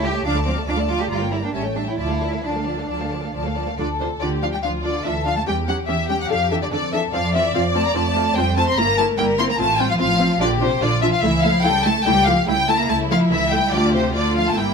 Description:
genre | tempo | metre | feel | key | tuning
quick classical-period movement for string orchestra | 144 BPM | 4/4 | rubato | D minor | A4 = 441 Hz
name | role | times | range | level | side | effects
warm symphonic violin section | melody | 0.0-14.7 s | C5 to D6 | -22 LUFS | left 3 dB | none
warm symphonic violin section | second line | 0.0-14.7 s | E4 to F5 | -26 LUFS | left 4 dB | none
warm symphonic viola section | accompaniment | 0.0-14.7 s | F3 to A4 | -25 LUFS | right 1 dB | none
rich symphonic cello section | bass | 0.0-14.7 s | C3 to G4 | -25 LUFS | right 2 dB | none
warm symphonic double bass section | bass | 0.0-14.7 s | G1 to F2 | -25 LUFS | right 2 dB | none
room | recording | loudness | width
light reverb | none | -17 LUFS | side -5 dB against mid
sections
0.0-3.8 A section; 3.8-14.7 A section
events
none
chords
0.3 Dm; 1.1 Gm; 1.5 A7; 2.0 Dm; 5.5 C#dim/E; 6.3 Dm/F; 7.1 F; 8.8 Edim/G; 9.6 F/A; 10.4 Bb; 11.2 A/C#; 12.1 A7/C#; 13.7 Dm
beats
| 0.25 0.67 1.10 1.54 | 1.99 2.44 2.90 3.34 | 3.78 4.21 4.62 5.04 | 5.46 5.88 6.30 6.72 | 7.13 7.54 7.95 8.36 | 8.77 9.18 9.59 9.99 | 10.40 10.81 11.22 11.64 | 12.05 12.47 12.89 13.30 | 13.72 14.14 14.56

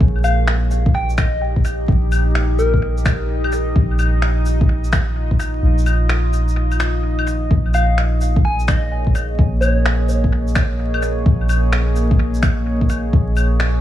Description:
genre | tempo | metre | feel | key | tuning
future garage | 128 BPM | 4/4 | swing 64% on 16ths | unclear | A4 = 440 Hz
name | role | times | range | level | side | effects
deep dark ambient pad | sustained chords | 0.0-13.8 s | Bb3 to Eb5 | -24 LUFS | left 1 dB | chorus, built-in reverb, sidechain pumping
soft 808-style bass | bass | 0.0-13.8 s | Bb1 | -18 LUFS | equal | tube saturation, sidechain pumping
electronic kick drum | drums | 0.0-13.3 s | none | -17 LUFS | equal | none
soft struck synth lead | melody | 0.2-3.0, 7.7-10.0 s | Bb4 to Ab5 | -24 LUFS | left 1 dB | chorus, analog delay
electronic shaker, claves and finger snaps | drums | 0.2-13.7 s | none | -24 LUFS | left 2 dB | analog delay
room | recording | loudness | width
light reverb, digital ambience | echo-heavy mix, vinyl crackle | -15 LUFS | side -12 dB against mid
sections
0.0-13.8 A section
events
kick drops out 5.6-7.5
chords
0.0 Ebadd9/Bb; 7.5 Bbm7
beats
| 0.01 0.47 0.94 1.41 | 1.88 2.35 2.82 3.29 | 3.76 4.22 4.69 5.16 | 5.63 6.10 6.57 7.04 | 7.51 7.97 8.44 8.91 | 9.38 9.85 10.32 10.79 | 11.26 11.72 12.19 12.66 | 13.13 13.60

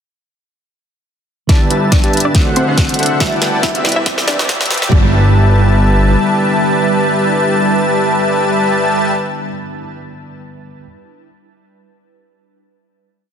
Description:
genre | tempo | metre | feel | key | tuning
future bass | 140 BPM | 4/4 | swing 54% on 16ths, half-time | G major | A4 = 439 Hz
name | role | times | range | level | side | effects
wide unison pluck | melody | 1.5-9.5 s | C4 to E5 | -21 LUFS | right 1 dB | sidechain pumping, digital delay
mellow tine electric piano | accompaniment | 1.5-10.9 s | C3 to F#4 | -22 LUFS | right 2 dB | medium stereo tremolo, sidechain pumping, ping-pong delay
ethereal airy pad | sustained chords | 2.9-9.1 s | G3 to B4 | -23 LUFS | right 1 dB | ensemble chorus, built-in reverb, phaser, sidechain pumping
airy dreamy lead | arpeggios | 1.5-9.1 s | E5 to A5 | -21 LUFS | left 2 dB | chorus, sidechain pumping, ping-pong delay
soft supersaw | riff | 1.5-9.1 s | G3 to A5 | -16 LUFS | equal | sidechain pumping, low-pass filter, ping-pong delay
fat analog bass | bass | 1.5-6.2 s | D1 to G2 | -16 LUFS | equal | sidechain pumping, high-pass filter
electronic kick drum | drums | 1.5-5.0 s | none | -13 LUFS | equal | none
pop drum kit | drums | 1.5-4.9 s | hi-hat, snare drum | -18 LUFS | equal | high-pass filter on snare, high-pass filter on hats
riser | sound effects | 2.7-4.9 s | none | -26 LUFS | right 2 dB | none
room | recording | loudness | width
moderate lush hall reverb, RT60 2.1 s | dense, heavily limited modern master, high-pass filter | -11 LUFS | side -8 dB against mid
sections
1.5-4.9 build; 4.9-8.3 final chord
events
build-up 1.5-4.9; drum fill 1.5-4.9; filter sweep on supersaw synth 1.5-4.9; filter sweep 1.5-4.9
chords
1.5 G6; 2.4 D7; 3.2 Em11; 3.9 Cmaj7; 4.9 G6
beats
| 1.49 1.92 2.35 2.78 | 3.21 3.64 4.06 4.49 | 4.92 5.35 5.78 6.21 | 6.64 7.06 7.49 7.92

